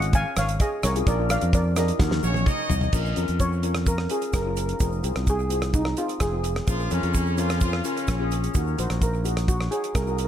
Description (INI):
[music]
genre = calypso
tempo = 128 BPM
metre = 4/4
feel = straight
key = Bb minor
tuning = A4 = 436 Hz
[part]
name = steel pan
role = melody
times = 0.0-10.3 s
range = Eb4 to Ab5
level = -28 LUFS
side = right 1 dB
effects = tape echo
[part]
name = steel pan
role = accompaniment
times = 0.0-10.3 s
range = C4 to Db5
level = -31 LUFS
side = left 5 dB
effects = tape echo
[part]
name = modern bright fingered electric bass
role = bass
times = 0.0-10.3 s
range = F1 to F2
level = -25 LUFS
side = equal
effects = none
[part]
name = damped 70s drum kit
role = drums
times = 0.0-10.3 s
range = crash cymbal, hi-hat, kick drum, rim click, snare drum, toms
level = -26 LUFS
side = equal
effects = none
[part]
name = tube shaker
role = percussion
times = 0.0-10.3 s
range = none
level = -39 LUFS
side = right 7 dB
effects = tape echo
[part]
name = brilliant horn section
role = second line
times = 2.2-2.9, 6.7-8.7 s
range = Db3 to Eb5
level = -31 LUFS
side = right 1 dB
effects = tape echo
[sound]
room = light reverb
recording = echo-heavy mix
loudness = -22 LUFS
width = side -10 dB against mid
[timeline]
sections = 0.0-2.9 A section; 2.9-10.3 B section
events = drum fill 2.0-2.9; steel pan solo 2.9-10.3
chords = 0.0 Db; 1.1 Bb7; 2.0 Ebm; 2.9 Bbm; 4.8 Fm; 6.7 Bbm; 8.6 Ebm